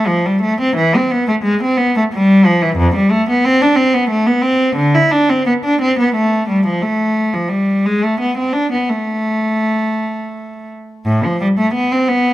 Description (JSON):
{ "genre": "classical, baroque-style suite movement for unaccompanied cello", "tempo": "54-61 BPM (dotted quarters)", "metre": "6/8", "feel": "rubato", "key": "A minor", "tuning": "A4 = 438 Hz", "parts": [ { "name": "rich cello", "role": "solo", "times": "0.0-12.3 s", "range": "F2 to E4", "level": "-12 LUFS", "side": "equal", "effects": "none" } ], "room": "light reverb", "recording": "close, detailed microphones", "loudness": "-12 LUFS", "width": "side -15 dB against mid", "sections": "0.0-11.1 A section; 11.1-12.3 B section", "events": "none", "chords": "none" }